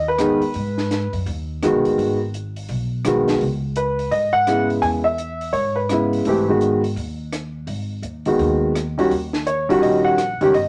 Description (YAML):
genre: jazz piano trio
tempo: 168 BPM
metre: 4/4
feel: swing 64% on 8ths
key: G# minor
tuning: A4 = 437 Hz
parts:
  - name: warm upright piano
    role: melody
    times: 0.0-10.7 s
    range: C#3 to G#5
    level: -20 LUFS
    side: equal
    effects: none
  - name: upright bass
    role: bass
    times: 0.0-10.7 s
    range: G1 to G#2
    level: -29 LUFS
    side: equal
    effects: none
  - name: compact cocktail drum kit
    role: drums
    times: 0.2-10.6 s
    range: hi-hat, kick drum, rim click, snare drum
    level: -33 LUFS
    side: equal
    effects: none
room: moderate studio reverb, RT60 0.7 s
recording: none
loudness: -20 LUFS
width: mono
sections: 0.0-10.7 A section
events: none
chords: 0.0 G#m7; 3.4 C#m7; 6.3 G#m7; 9.1 D#7#9